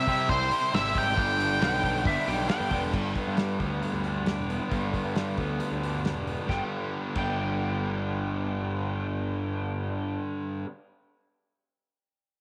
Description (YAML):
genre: classic rock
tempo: 135 BPM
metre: 4/4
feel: straight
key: G major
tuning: A4 = 437 Hz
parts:
  - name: octave-fuzz lead guitar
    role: melody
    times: 0.0-2.5 s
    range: C5 to G5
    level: -30 LUFS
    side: equal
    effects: distortion
  - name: crunchy overdriven guitar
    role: riff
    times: 0.0-10.7 s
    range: G2 to C4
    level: -38 LUFS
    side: equal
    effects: none
  - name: distorted electric guitar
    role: riff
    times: 0.0-10.7 s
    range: G2 to G4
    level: -34 LUFS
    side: equal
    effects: distortion
  - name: fuzz picked electric bass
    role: bass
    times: 0.0-10.2 s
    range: E1 to C3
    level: -35 LUFS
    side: equal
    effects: overdrive
  - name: damped 70s drum kit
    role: drums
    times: 0.1-7.3 s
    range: crash cymbal, hi-hat, kick drum, snare drum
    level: -35 LUFS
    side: equal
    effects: none
  - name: overdriven slide guitar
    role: second line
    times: 1.6-2.8, 6.5-10.2 s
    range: E5 to G5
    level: -37 LUFS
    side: equal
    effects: none
room: moderate spring reverb, RT60 1.6 s, small room reverb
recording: none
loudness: -28 LUFS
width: mono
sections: 0.0-2.9 A section; 2.9-6.5 B section; 6.5-10.1 C section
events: none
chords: 0.0 C; 1.2 G